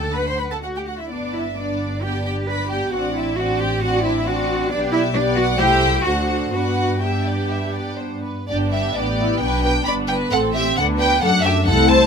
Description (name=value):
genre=quick classical-period movement for string orchestra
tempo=121-138 BPM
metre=4/4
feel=rubato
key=G major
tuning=A4 = 440 Hz
part: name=warm studio violin section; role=melody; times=0.0-12.1 s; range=B4 to B5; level=-24 LUFS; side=equal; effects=none
part: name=warm studio violin section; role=second line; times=0.0-12.1 s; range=G4 to C6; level=-24 LUFS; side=equal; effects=none
part: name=dark studio viola section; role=accompaniment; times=0.0-12.1 s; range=A3 to G4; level=-24 LUFS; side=left 1 dB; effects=none
part: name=dark studio double bass section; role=bass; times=0.0-12.1 s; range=G1 to G2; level=-25 LUFS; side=equal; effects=none
part: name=warm studio cello section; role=bass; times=0.0-12.1 s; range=G2 to C5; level=-24 LUFS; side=right 1 dB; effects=none
room=light reverb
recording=close, detailed microphones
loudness=-18 LUFS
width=side -6 dB against mid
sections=0.0-8.5 A section; 8.5-12.1 A section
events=none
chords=0.2 D; 1.1 G; 2.9 D7/A; 4.7 G/B; 5.6 Am/C; 6.1 D7; 6.5 G; 10.3 D7/A